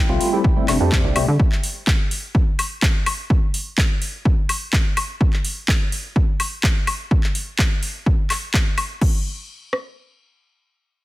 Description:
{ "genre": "filtered disco house", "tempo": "126 BPM", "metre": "4/4", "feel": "straight", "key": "unclear", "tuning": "A4 = 440 Hz", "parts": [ { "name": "warm chamber violin section", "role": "sustained chords", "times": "0.0-1.4 s", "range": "E4 to G5", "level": "-33 LUFS", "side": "left 2 dB", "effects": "sidechain pumping, low-pass filter" }, { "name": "tine electric piano", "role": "accompaniment", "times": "0.1-1.3 s", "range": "G3 to G4", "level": "-22 LUFS", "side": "equal", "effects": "medium stereo tremolo, phaser, sidechain pumping, low-pass filter" }, { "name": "plucky analog bass", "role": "bass", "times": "0.1-1.4 s", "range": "F1 to D3", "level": "-20 LUFS", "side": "equal", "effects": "sidechain pumping, low-pass filter" }, { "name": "tambourine", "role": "percussion", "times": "0.1-5.2 s", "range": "none", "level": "barely audible", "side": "none", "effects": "none" }, { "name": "house drum kit", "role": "drums", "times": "0.2-9.1 s", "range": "crash cymbal, handclaps, hi-hat, woodblock", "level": "-23 LUFS", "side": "left 1 dB", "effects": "overdrive" }, { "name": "house drum kit", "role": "drums", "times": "0.4-9.8 s", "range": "kick drum, rim click", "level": "-18 LUFS", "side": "equal", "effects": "overdrive" } ], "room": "little or no reverb", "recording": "none", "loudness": "-18 LUFS", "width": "side -17 dB against mid", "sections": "0.0-9.0 A section; 9.0-11.0 B section", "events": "filter sweep on analog synth bass 0.0-1.4", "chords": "0.0 Fmaj9; 1.4 N.C.", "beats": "0.44 0.92 | 1.40 1.87 2.35 2.83 | 3.30 3.78 4.25 4.73 | 5.21 5.68 6.16 6.63 | 7.11 7.59 8.06 8.54 | 9.02 9.49" }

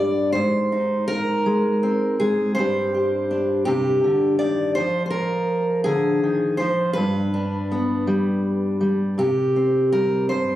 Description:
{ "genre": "folk, solo fingerstyle acoustic guitar", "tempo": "54 BPM (dotted quarters)", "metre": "6/8", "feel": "straight", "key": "C minor", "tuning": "A4 = 441 Hz", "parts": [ { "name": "fingerpicked steel-string acoustic guitar", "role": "solo", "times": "0.0-10.6 s", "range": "G2 to D5", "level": "-19 LUFS", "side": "equal", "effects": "none" } ], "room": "light reverb", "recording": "recorded on a phone in the room, club reverb, compression", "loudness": "-19 LUFS", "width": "side -13 dB against mid", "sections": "0.0-9.2 A section; 9.2-10.6 B section", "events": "none", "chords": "0.3 Ab; 2.6 G5; 4.8 Ddim/F; 7.0 G; 9.2 C5", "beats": "| 0.34 1.46 | 2.57 3.68 | 4.77 5.87 | 6.96 8.06 | 9.18 10.29" }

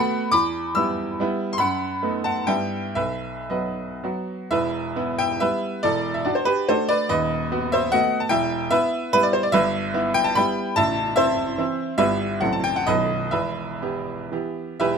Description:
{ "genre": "classical, romantic triple-time dance for piano with dotted rhythms", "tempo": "107-162 BPM", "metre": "3/4", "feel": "rubato", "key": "E minor", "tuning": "A4 = 444 Hz", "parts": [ { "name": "bright baby grand piano", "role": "solo", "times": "0.0-15.0 s", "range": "A0 to E6", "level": "-20 LUFS", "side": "equal", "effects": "none" } ], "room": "light reverb", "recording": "close, detailed microphones", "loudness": "-20 LUFS", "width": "side -6 dB against mid", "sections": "0.0-4.5 A section; 4.5-14.8 B section", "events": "none", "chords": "0.3 Em; 1.6 B7/F#; 2.5 Em/G; 3.0 B; 4.5 Em; 5.8 D/E; 7.1 B7/D#; 8.3 Em; 9.5 Em/G; 10.8 Am; 12.0 Em/G; 12.4 F#dim/A; 12.9 B7; 13.3 Em", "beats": "| 0.34 0.76 1.20 | 1.60 2.02 2.49 | 2.97 3.51 4.04 | 4.52 4.96 5.41 | 5.84 6.26 6.70 | 7.11 7.53 7.94 | 8.31 8.71 9.13 | 9.53 9.94 10.36 | 10.76 11.15 11.57 | 11.97 12.40 12.87 | 13.32 13.81 14.31 | 14.79" }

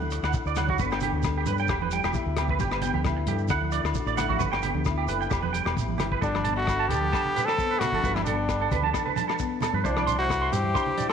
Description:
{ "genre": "highlife guitar band", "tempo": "133 BPM", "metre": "4/4", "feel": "swing 54% on 16ths", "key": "G major", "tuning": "A4 = 443 Hz", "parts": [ { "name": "fingerpicked steel-string acoustic guitar", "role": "accompaniment", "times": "0.0-11.1 s", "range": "E2 to G4", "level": "-34 LUFS", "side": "left 11 dB", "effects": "none" }, { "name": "fingered electric bass", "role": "bass", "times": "0.0-10.7 s", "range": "E1 to G2", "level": "-29 LUFS", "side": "equal", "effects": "none" }, { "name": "congas", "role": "percussion", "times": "0.0-11.1 s", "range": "none", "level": "-36 LUFS", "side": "right 9 dB", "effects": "none" }, { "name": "clean electric guitar", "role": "arpeggios", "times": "0.1-11.1 s", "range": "F#4 to C6", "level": "-29 LUFS", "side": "right 10 dB", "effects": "ensemble chorus, tape echo" }, { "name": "warm soul drum kit", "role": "drums", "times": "0.1-11.1 s", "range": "hi-hat, kick drum, rim click", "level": "-32 LUFS", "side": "left 3 dB", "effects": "none" }, { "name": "shekere", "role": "percussion", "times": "0.1-11.1 s", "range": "none", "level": "-37 LUFS", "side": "right 7 dB", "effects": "none" }, { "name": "agogo bells", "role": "percussion", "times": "0.2-11.1 s", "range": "none", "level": "-36 LUFS", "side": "left 10 dB", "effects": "none" }, { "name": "clear trumpet", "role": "melody", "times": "6.2-11.1 s", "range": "D4 to A4", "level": "-27 LUFS", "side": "equal", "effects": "none" }, { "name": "raspy tenor saxophone", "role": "second line", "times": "6.2-11.1 s", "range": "G3 to C4", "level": "-36 LUFS", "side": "left 9 dB", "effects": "none" } ], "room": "moderate echo chamber reverb, RT60 1.4 s, small room ambience", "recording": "1960s-style stereo with parts hard left and right", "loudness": "-23 LUFS", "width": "side -7 dB against mid", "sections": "0.0-6.2 A section; 6.2-11.1 B section", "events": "none", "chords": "0.0 Dadd9; 0.8 G; 1.7 Em; 2.6 G; 3.5 Dadd9; 4.4 G; 5.3 Em; 6.2 Gadd9; 9.8 Cadd9", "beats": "0.34 | 0.79 1.25 1.70 2.15 | 2.60 3.05 3.50 3.96 | 4.41 4.86 5.31 5.76 | 6.22 6.67 7.12 7.58 | 8.03 8.48 8.94 9.39 | 9.84 10.30 10.75" }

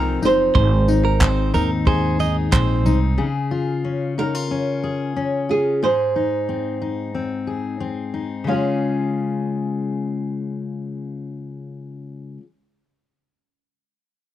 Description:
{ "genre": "acoustic pop", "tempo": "91 BPM", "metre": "4/4", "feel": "straight", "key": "Db major", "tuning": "A4 = 440 Hz", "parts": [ { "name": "flamenco guitar", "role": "melody", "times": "0.0-12.4 s", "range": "Ab4 to F5", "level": "-22 LUFS", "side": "right 4 dB", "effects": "none" }, { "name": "fingerpicked steel-string acoustic guitar", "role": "accompaniment", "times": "0.0-12.5 s", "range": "Ab2 to Ab4", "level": "-23 LUFS", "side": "left 4 dB", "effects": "none" }, { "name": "upright bass", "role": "bass", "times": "0.0-3.2 s", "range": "Gb1 to Eb2", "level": "-19 LUFS", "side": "right 1 dB", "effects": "none" }, { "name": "compact cocktail drum kit", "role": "drums", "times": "0.2-3.0 s", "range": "handclaps, kick drum, tambourine", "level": "-18 LUFS", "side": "right 1 dB", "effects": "none" }, { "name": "direct-recorded clean electric guitar", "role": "arpeggios", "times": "0.5-3.0 s", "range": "Bb4 to Eb5", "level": "-26 LUFS", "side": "right 9 dB", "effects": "none" } ], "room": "small room ambience", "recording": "dry, close 1970s-style studio recording", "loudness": "-18 LUFS", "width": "side -12 dB against mid", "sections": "0.0-3.2 A section; 3.2-8.5 B section; 8.5-11.1 C section", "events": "none", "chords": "0.0 Fm7; 0.6 Ab; 3.2 Db; 5.8 Ab; 8.5 Db", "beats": "| 0.55 1.21 1.87 2.53 | 3.19 3.84 4.50 5.16 | 5.82 6.49 7.15 7.81 | 8.47 9.13 9.79 10.45" }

